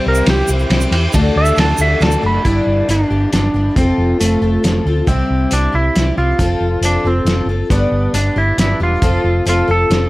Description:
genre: folk rock and heartland rock.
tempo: 137 BPM.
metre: 3/4.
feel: straight.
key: G mixolydian.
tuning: A4 = 440 Hz.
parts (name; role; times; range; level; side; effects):
clean lap steel guitar; melody; 0.0-10.1 s; A3 to B5; -17 LUFS; right 1 dB; plate reverb.
picked twelve-string acoustic guitar; accompaniment; 0.0-10.1 s; G2 to A4; -20 LUFS; left 3 dB; plate reverb.
tonewheel organ; sustained chords; 0.0-2.4, 7.7-10.1 s; A3 to D5; -28 LUFS; right 1 dB; slow rotary speaker, overdrive, chorus vibrato, plate reverb.
hollow-body short-scale fingered electric bass; bass; 0.1-10.0 s; E1 to E2; -16 LUFS; equal; none.
egg shaker; percussion; 0.1-2.2 s; none; -28 LUFS; right 6 dB; none.
cloth-damped thuddy drum kit; drums; 0.3-10.0 s; hi-hat, kick drum, ride cymbal, snare drum; -18 LUFS; equal; none.
room: light reverb.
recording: none.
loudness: -12 LUFS.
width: side -18 dB against mid.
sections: 0.0-2.4 A section; 2.4-10.1 B section.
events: electric slide guitar solo 0.0-2.4.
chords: 0.0 C; 1.1 D; 2.4 G; 3.8 F; 5.1 C; 6.4 F; 7.7 G; 9.0 F.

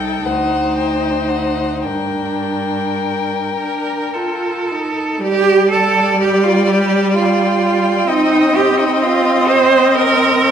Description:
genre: classical, slow romantic movement for string quartet.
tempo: 35-45 BPM (dotted quarters).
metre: 6/8.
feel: rubato.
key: G minor.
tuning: A4 = 442 Hz.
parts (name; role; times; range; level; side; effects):
warm violin; melody; 0.0-10.5 s; F#5 to G5; -24 LUFS; left 7 dB; none.
rich violin; second line; 0.0-10.5 s; A4 to Eb5; -21 LUFS; left 4 dB; none.
warm viola; accompaniment; 0.0-10.5 s; G3 to F4; -18 LUFS; right 1 dB; none.
rich cello; bass; 0.0-10.5 s; C2 to C5; -16 LUFS; right 4 dB; none.
room: wet recital hall reverb, RT60 1.4 s.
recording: minimal, uncompressed stereo recording.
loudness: -13 LUFS.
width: side -8 dB against mid.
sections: 0.0-5.2 A section; 5.2-10.5 A section.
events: none.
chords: 0.3 D7b9; 1.9 Gm; 5.2 G5; 8.1 Cm7.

